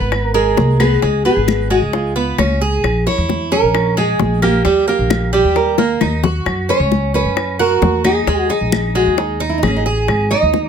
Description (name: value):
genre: latin, Cuban son and guajira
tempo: 132 BPM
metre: 4/4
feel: straight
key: unclear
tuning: A4 = 440 Hz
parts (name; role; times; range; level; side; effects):
- nylon-string guitar; melody; 0.0-10.7 s; C#4 to D#5; -17 LUFS; right 1 dB; none
- Cuban tres; arpeggios; 0.0-10.7 s; G3 to G#4; -19 LUFS; right 3 dB; none
- upright bass; bass; 0.0-10.7 s; G#1 to F#2; -19 LUFS; equal; none
- bongos; percussion; 0.1-10.7 s; none; -21 LUFS; left 11 dB; none
- claves; percussion; 0.1-10.3 s; none; -26 LUFS; left 2 dB; none
- congas; percussion; 0.1-10.7 s; none; -24 LUFS; left 2 dB; none
room: light reverb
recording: close, detailed microphones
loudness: -13 LUFS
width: side -7 dB against mid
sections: 0.0-10.7 A section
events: drum fill 5.8-6.5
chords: 0.0 G#m; 1.0 C#7; 2.8 A#m7b5; 4.7 D#; 6.5 F#7; 8.3 D#sus4; 10.1 G#5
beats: 0.12 0.57 | 1.03 1.48 1.93 2.38 | 2.84 3.29 3.74 4.20 | 4.65 5.10 5.56 6.01 | 6.46 6.91 7.37 7.82 | 8.27 8.73 9.18 9.63 | 10.08 10.54